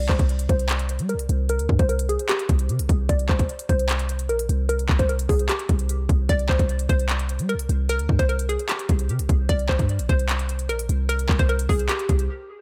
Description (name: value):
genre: hip hop, trap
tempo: 150 BPM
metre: 4/4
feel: half-time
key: unclear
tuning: A4 = 440 Hz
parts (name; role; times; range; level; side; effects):
- hollow square pluck; melody; 0.0-12.6 s; G4 to D5; -30 LUFS; equal; chorus, low-pass filter, dub echo
- warm 808-style bass; bass; 0.0-12.3 s; Bb1 to G3; -25 LUFS; equal; none
- trap drum kit; drums; 0.1-12.3 s; handclaps, hi-hat, kick drum; -26 LUFS; equal; none
room: digital ambience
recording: echo-heavy mix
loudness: -23 LUFS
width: mono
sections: 0.0-12.6 A section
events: filter sweep on synth pluck 0.0-6.3; break 12.3-12.6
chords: 0.0 C5; 3.1 Bbsus2; 4.7 Abmaj9/C (rootless); 6.3 C5; 9.5 Gm; 11.1 Abmaj9/C (rootless)